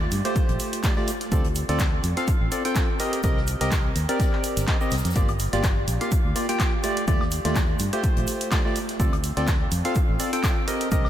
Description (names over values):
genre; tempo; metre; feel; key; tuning
piano house; 125 BPM; 4/4; swing 55% on 16ths; unclear; A4 = 440 Hz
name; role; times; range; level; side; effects
fingered electric bass; bass; 0.0-11.1 s; G1 to G2; -27 LUFS; equal; sidechain pumping
open jazz drum kit; drums; 0.1-11.1 s; hi-hat, shaker, snare drum; -39 LUFS; left 3 dB; high-pass filter on hats, high-pass filter on snare, high-pass filter on perc, high-pass filter on room
punchy analog drum machine; drums; 0.1-11.1 s; handclaps, hi-hat, woodblock; -31 LUFS; right 1 dB; none
percussive organ stab; riff; 0.2-11.1 s; A3 to G5; -26 LUFS; equal; wide subtle chorus, sidechain pumping, diffuse ambient delay
electronic kick drum; drums; 0.4-11.0 s; none; -23 LUFS; equal; none
room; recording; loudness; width
moderate cathedral reverb, RT60 4.4 s; dreamy mix soaked in reverb; -21 LUFS; side -11 dB against mid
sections
0.0-11.1 A section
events
none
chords
0.0 Ebmaj9#11 (rootless); 1.3 Dm7; 3.0 Cm7; 5.2 Gm7; 6.8 Ebmaj9#11; 9.0 Dm7